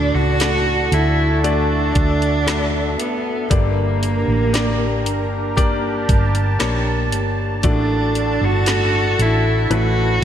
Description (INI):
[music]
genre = pop ballad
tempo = 58 BPM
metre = 4/4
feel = straight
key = D major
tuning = A4 = 441 Hz
[part]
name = warm cello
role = melody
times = 0.0-10.2 s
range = Bb3 to F#4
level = -21 LUFS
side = right 2 dB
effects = tape echo
[part]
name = felt-muted upright piano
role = accompaniment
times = 0.0-10.2 s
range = G2 to D5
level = -24 LUFS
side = left 4 dB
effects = none
[part]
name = sweeping resonant pad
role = sustained chords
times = 0.2-10.2 s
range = D4 to Bb5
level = -25 LUFS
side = right 2 dB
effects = chorus
[part]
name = hollow-body short-scale fingered electric bass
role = bass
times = 0.0-10.2 s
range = G1 to D2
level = -20 LUFS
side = equal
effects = none
[part]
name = smooth R&B drum kit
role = drums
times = 0.4-9.9 s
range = hi-hat, kick drum, snare drum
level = -22 LUFS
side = equal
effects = none
[sound]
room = moderate lush hall reverb, RT60 2.5 s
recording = dreamy mix soaked in reverb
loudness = -16 LUFS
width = side -10 dB against mid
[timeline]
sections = 0.0-10.2 A section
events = none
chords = 0.0 D; 3.5 Gm; 7.6 D; 9.7 Aadd9